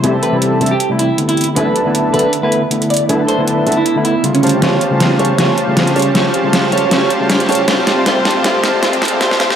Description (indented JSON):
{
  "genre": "future bass",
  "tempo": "157 BPM",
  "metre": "4/4",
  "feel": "swing 56% on 16ths, half-time",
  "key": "A minor",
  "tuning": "A4 = 440 Hz",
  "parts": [
    { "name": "overdriven tine electric piano", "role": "accompaniment", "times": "0.0-9.5 s", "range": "C3 to F4", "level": "-17 LUFS", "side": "left 2 dB", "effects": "none" },
    { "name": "shimmering ambient pad", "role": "sustained chords", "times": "0.0-9.6 s", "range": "C#3 to G4", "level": "-25 LUFS", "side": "right 1 dB", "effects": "none" },
    { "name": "soft supersaw", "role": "riff", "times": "0.0-9.6 s", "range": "C4 to A5", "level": "-17 LUFS", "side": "equal", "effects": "low-pass filter" },
    { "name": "warm 808-style bass", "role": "bass", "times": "0.0-9.6 s", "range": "A1 to A2", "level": "-27 LUFS", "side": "equal", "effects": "none" },
    { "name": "dubstep drum kit", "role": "drums", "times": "0.0-9.6 s", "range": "hi-hat, snare drum", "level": "-17 LUFS", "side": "equal", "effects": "none" },
    { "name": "riser", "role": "sound effects", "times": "2.8-9.6 s", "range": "none", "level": "-26 LUFS", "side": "right 2 dB", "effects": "none" },
    { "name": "electric guitar through a small old amp", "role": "melody", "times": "0.2-9.6 s", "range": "C#4 to D5", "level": "-18 LUFS", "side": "right 3 dB", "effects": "digital delay" }
  ],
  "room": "wet lush hall reverb, RT60 1.8 s",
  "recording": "dark, warm production, high-pass filter",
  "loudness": "-11 LUFS",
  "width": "side -8 dB against mid",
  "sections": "0.0-9.6 A section",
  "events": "build-up 0.0-9.6; filter sweep on supersaw synth 0.0-9.6; filter sweep 0.0-9.6; drum fill 4.6-9.6",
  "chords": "0.0 Am7; 1.4 E7sus4/B; 4.4 A7alt; 7.7 Dm7"
}